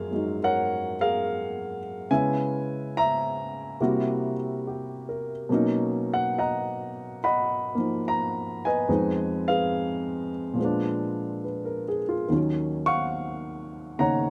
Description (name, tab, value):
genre	jazz ballad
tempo	71 BPM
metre	4/4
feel	swing 66% on 8ths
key	F# major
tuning	A4 = 440 Hz
part	warm grand piano	solo	0.0-14.3 s	D#2 to C#6	-27 LUFS	equal	none
room	little or no reverb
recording	recorded outdoors, with no room sound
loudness	-27 LUFS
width	mono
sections	0.0-14.3 A section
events	none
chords	0.0 F#maj9; 2.1 C#m7; 3.8 C7#11; 5.5 Bmaj9; 8.9 Fm7b5; 10.6 A#7b9; 12.3 D#m9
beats	0.40 1.25 | 2.10 2.94 3.79 4.64 | 5.48 6.33 7.18 8.03 | 8.88 9.72 10.57 11.42 | 12.27 13.12 13.97